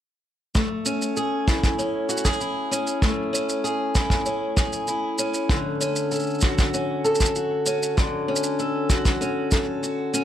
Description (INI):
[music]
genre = folktronica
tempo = 97 BPM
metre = 4/4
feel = straight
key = A major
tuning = A4 = 440 Hz
[part]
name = picked steel-string acoustic guitar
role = arpeggios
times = 0.5-10.2 s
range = D3 to A4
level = -23 LUFS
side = left 1 dB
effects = tape echo
[part]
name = kick drum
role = drums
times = 0.6-9.6 s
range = none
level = -22 LUFS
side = equal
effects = none
[part]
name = shaker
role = drums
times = 0.6-10.2 s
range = none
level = -29 LUFS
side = right 2 dB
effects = none
[sound]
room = light reverb, studio reverb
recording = none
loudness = -21 LUFS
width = side -10 dB against mid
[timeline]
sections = 0.6-10.2 A section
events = none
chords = 0.6 Amaj7; 5.5 Dmaj7